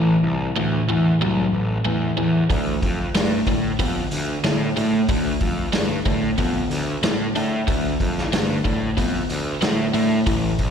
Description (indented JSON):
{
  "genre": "blues rock power trio and southern rock",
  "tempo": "93 BPM",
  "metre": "4/4",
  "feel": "straight",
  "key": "unclear",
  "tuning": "A4 = 440 Hz",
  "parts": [
    { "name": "overdriven electric guitar", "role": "riff", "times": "0.0-10.7 s", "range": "A2 to B3", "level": "-21 LUFS", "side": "equal", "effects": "none" },
    { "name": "fuzz picked electric bass", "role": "bass", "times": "0.0-10.7 s", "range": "A1 to A2", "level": "-24 LUFS", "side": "equal", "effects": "overdrive" },
    { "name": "vintage drum kit", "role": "drums", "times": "2.5-10.7 s", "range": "hi-hat, kick drum, snare drum", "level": "-24 LUFS", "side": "equal", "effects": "none" }
  ],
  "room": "light reverb, small room ambience",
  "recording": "live gig heard through the venue's PA, recital hall reverb",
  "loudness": "-19 LUFS",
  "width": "side -7 dB against mid",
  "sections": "0.0-10.7 A section",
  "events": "none",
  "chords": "0.0 Am; 2.5 Dm",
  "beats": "0.56 1.21 1.85 | 2.50 3.15 3.79 4.44 | 5.09 5.73 6.38 7.03 | 7.68 8.32 8.97 9.62 | 10.27"
}